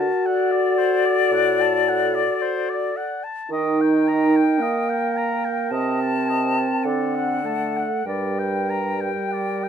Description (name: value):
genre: classical, slow romantic movement for wind quintet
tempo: 48-56 BPM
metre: 4/4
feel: rubato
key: unclear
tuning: A4 = 440 Hz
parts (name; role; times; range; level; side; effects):
- warm oboe; second line; 0.0-9.7 s; C5 to Bb5; -28 LUFS; left 2 dB; none
- clear clarinet; accompaniment; 0.0-9.7 s; A4 to Bb4; -30 LUFS; right 10 dB; none
- warm French horn; accompaniment; 0.0-9.7 s; G3 to F#4; -22 LUFS; equal; none
- mellow bassoon; bass; 0.0-9.1 s; G2 to Eb3; -27 LUFS; right 2 dB; none
- bright silver concert flute; melody; 0.2-9.7 s; D5 to A5; -24 LUFS; left 6 dB; none
room: moderate studio reverb, RT60 0.6 s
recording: none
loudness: -19 LUFS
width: side -8 dB against mid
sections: 0.0-9.7 A section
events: none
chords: 0.0 D; 3.5 Eb; 5.7 Adim/C; 6.9 D; 8.1 Gm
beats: 0.25 1.32 2.41 | 3.51 4.61 5.72 6.86 | 8.07 9.32